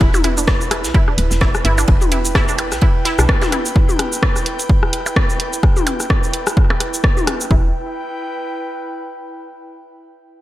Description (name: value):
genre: minimal techno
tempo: 128 BPM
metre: 4/4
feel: swing 57% on 16ths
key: E minor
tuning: A4 = 440 Hz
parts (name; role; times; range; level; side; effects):
- resonant blip pluck; riff; 0.0-3.6, 7.5-7.7 s; D4 to E4; -25 LUFS; right 2 dB; chorus, phaser, sidechain pumping, digital delay
- woody FM bass; bass; 0.0-3.3, 7.5-7.7 s; D1 to B1; -20 LUFS; equal; sidechain pumping
- electronic kick drum; drums; 0.0-7.6 s; none; -15 LUFS; equal; none
- tight metal drum kit; drums; 0.0-3.8 s; ride cymbal, snare drum; -33 LUFS; right 1 dB; none
- airy breathy pad; texture; 0.0-9.3 s; E4 to G5; -26 LUFS; right 1 dB; chorus, sidechain pumping
- punchy analog drum machine; drums; 0.1-7.5 s; hi-hat, rim click, shaker; -22 LUFS; right 1 dB; gated reverb
- minimal click drum kit; percussion; 0.1-7.4 s; percussion blips, rim click, toms; -23 LUFS; left 3 dB; gated reverb, digital delay
room: light reverb, digital ambience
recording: bright 1980s-style digital production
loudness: -14 LUFS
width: side -15 dB against mid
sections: 0.0-7.5 A section; 7.5-9.4 B section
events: none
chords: 0.0 Em